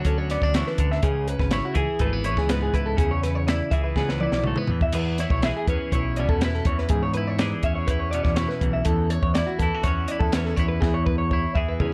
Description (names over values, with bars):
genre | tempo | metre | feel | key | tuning
math rock and midwest emo | 122 BPM | 4/4 | straight | E mixolydian | A4 = 440 Hz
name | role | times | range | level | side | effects
twelve-string electric guitar | accompaniment | 0.0-11.9 s | E2 to G#4 | -31 LUFS | equal | none
electric guitar through a small old amp | arpeggios | 0.0-11.9 s | F#4 to E5 | -30 LUFS | equal | none
growling picked electric bass | bass | 0.0-11.9 s | G#1 to G#2 | -29 LUFS | equal | overdrive
compact cocktail drum kit | drums | 0.0-11.9 s | crash cymbal, hi-hat, kick drum, snare drum, toms | -27 LUFS | equal | none
room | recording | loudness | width
light reverb | dark, warm production | -23 LUFS | mono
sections
0.0-11.9 A section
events
drum fill 4.0-4.9, 10.8-11.9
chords
0.0 Dmaj7; 1.0 C#m7; 4.7 E6; 8.9 A69/E; 10.8 E6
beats
0.05 0.53 | 1.02 1.51 2.00 2.49 | 2.98 3.47 3.96 4.45 | 4.94 5.42 5.92 6.41 | 6.90 7.39 7.88 8.37 | 8.86 9.35 9.84 10.33 | 10.82 11.31 11.80